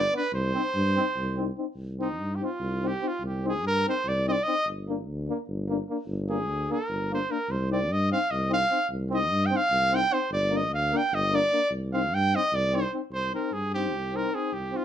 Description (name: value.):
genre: balkan folk, Balkan brass band.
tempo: 297 BPM (eighths).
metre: 7/8.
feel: straight.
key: C minor.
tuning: A4 = 440 Hz.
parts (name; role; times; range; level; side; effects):
clear cornet; melody; 0.0-14.8 s; Eb4 to G5; -26 LUFS; right 1 dB; none.
dark euphonium; accompaniment; 0.0-14.8 s; D4 to Eb4; -32 LUFS; left 10 dB; none.
dark tuba; bass; 0.0-14.7 s; G1 to G2; -30 LUFS; equal; none.
clear trombone; accompaniment; 0.1-14.8 s; Bb3 to C4; -34 LUFS; right 4 dB; none.
room: moderate studio reverb, RT60 0.6 s.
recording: none.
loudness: -24 LUFS.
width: side -10 dB against mid.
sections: 0.0-1.8 A section; 1.8-13.1 B section; 13.1-14.8 C section.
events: cornet solo 1.8-13.1.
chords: 0.3 Cm; 4.6 Gm; 7.5 Cm; 10.3 Gm; 11.7 Cm.